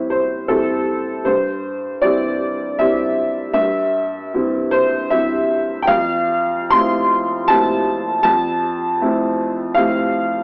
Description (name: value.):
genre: neoclassical minimalist piano.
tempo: 78 BPM.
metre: 3/4.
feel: rubato.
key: unclear.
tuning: A4 = 435 Hz.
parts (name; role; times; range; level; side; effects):
warm upright piano; solo; 0.0-10.4 s; F2 to C6; -15 LUFS; equal; none.
room: light reverb.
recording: worn, warbling old tape, cassette tape, warbly pitch drift, AM radio sound.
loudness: -15 LUFS.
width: side -33 dB against mid.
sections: 0.0-10.4 A section.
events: none.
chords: 0.0 Am7; 1.3 C/G; 5.9 Fmaj7.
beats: 0.49 | 1.28 2.06 2.82 | 3.59 4.36 5.13 | 5.89 6.70 7.48 | 8.24 9.00 9.77.